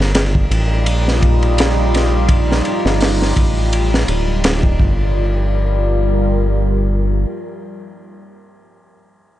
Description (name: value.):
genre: trip hop.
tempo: 84 BPM.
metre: 4/4.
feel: swing 56% on 16ths.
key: G minor.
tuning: A4 = 440 Hz.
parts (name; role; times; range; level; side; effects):
deep dark ambient pad; sustained chords; 0.0-8.3 s; G3 to Bb4; -20 LUFS; equal; chorus, built-in reverb.
round analog bass; bass; 0.0-7.3 s; D1 to Bb1; -16 LUFS; equal; none.
crunchy breakbeat drum kit; drums; 0.0-5.0 s; hi-hat, kick drum, ride cymbal, snare drum; -18 LUFS; equal; none.
room: studio reverb.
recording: nothing above 10.3 kHz.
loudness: -13 LUFS.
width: side -14 dB against mid.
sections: 0.0-5.2 A section; 5.2-8.0 B section.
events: none.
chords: 0.0 Ebadd9/G; 4.8 Gm7.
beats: 0.15 0.86 1.58 | 2.29 3.01 3.72 4.44 | 5.15 5.87 6.58 7.29.